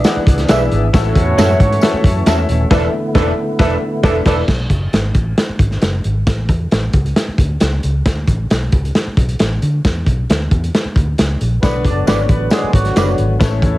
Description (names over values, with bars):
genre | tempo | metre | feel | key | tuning
uptempo 1960s-style soul | 135 BPM | 4/4 | straight | E mixolydian | A4 = 441 Hz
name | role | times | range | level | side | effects
mellow horn section | second line | 0.0-4.4, 11.6-13.2 s | E3 to D5 | -22 LUFS | right 3 dB | none
clear upright piano | accompaniment | 0.0-4.4, 11.6-13.8 s | A2 to F#5 | -20 LUFS | left 5 dB | none
tonewheel organ | sustained chords | 0.0-4.5, 11.6-13.8 s | D3 to A4 | -23 LUFS | equal | slow rotary speaker, overdrive, chorus vibrato
crunchy breakbeat drum kit | drums | 0.0-13.7 s | crash cymbal, hi-hat, kick drum, snare drum | -15 LUFS | equal | none
tambourine | percussion | 0.0-2.4, 11.6-13.5 s | none | -33 LUFS | left 4 dB | none
vintage muted fingered electric bass | bass | 0.2-13.8 s | D#1 to D3 | -17 LUFS | equal | none
electric guitar through a small old amp | stabs | 0.5-4.4, 12.1-13.1 s | C#4 to E5 | -21 LUFS | right 4 dB | analog chorus
room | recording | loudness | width
moderate club reverb, RT60 0.5 s | heavily compressed radio sound, cassette tape | -12 LUFS | side -17 dB against mid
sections
0.0-4.5 A section; 4.5-13.8 B section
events
band accent 2.7-4.5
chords
0.0 E7; 0.9 A6; 2.7 E7sus4; 4.5 B5; 6.3 A; 8.1 D5; 9.8 E5; 11.6 Bm